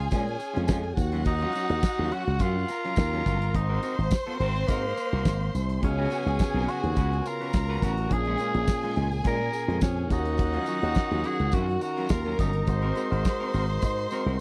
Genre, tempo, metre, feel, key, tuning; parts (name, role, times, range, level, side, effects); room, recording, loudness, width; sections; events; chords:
disco; 105 BPM; 4/4; straight; Eb minor; A4 = 440 Hz
breathy tenor saxophone; melody; 0.0-14.4 s; Bb3 to Bb4; -34 LUFS; equal
rich chamber violin section; second line; 0.0-14.4 s; Gb4 to C6; -36 LUFS; equal; slapback echo
slap bass with an envelope filter; bass; 0.0-14.4 s; G1 to Bb2; -30 LUFS; equal
electric guitar at the edge of break-up; accompaniment; 0.1-14.4 s; Gb3 to Db5; -38 LUFS; equal
damped 70s drum kit; drums; 0.1-14.4 s; hi-hat, kick drum, snare drum; -29 LUFS; equal
tambourine; percussion; 0.1-14.2 s; -50 LUFS; equal
barky tine electric piano; accompaniment; 5.8-14.4 s; Bb2 to Db5; -36 LUFS; equal; overdrive
small room ambience; dry, close 1970s-style studio recording; -27 LUFS; mono
0.0-14.4 A section
0.0 Bbm7; 1.0 Ebm9; 3.5 Ab9; 5.8 Db7sus4; 8.1 Bbm7; 10.1 Ebm9; 12.7 Ab9